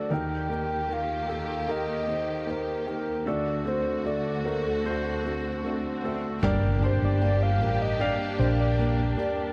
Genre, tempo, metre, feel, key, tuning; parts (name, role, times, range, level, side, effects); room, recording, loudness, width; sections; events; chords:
pop ballad; 76 BPM; 4/4; straight; G minor; A4 = 439 Hz
soft octave-layered synth lead; melody; 0.0-9.1 s; A4 to G5; -34 LUFS; equal; chorus, tape echo
dark grand piano; accompaniment; 0.0-9.5 s; D2 to F5; -32 LUFS; equal
warm studio string section; sustained chords; 0.0-9.5 s; D2 to G4; -37 LUFS; equal
swell and impact; sound effects; 5.4-9.5 s; -39 LUFS; equal
warm French horn section; second line; 6.4-9.5 s; G4; -40 LUFS; equal; tape echo
fingerpicked plugged-in steel-string acoustic guitar; arpeggios; 6.4-9.5 s; G3 to G4; -39 LUFS; equal
hollow-body short-scale fingered electric bass; bass; 6.4-9.1 s; G1 to Bb1; -27 LUFS; equal
moderate plate reverb, RT60 3.4 s; dreamy mix soaked in reverb; -27 LUFS; mono
0.0-6.4 A section; 6.4-9.5 B section
swell 5.4-6.4; impact 6.4-9.5
0.1 Eb; 3.3 D; 6.4 Gm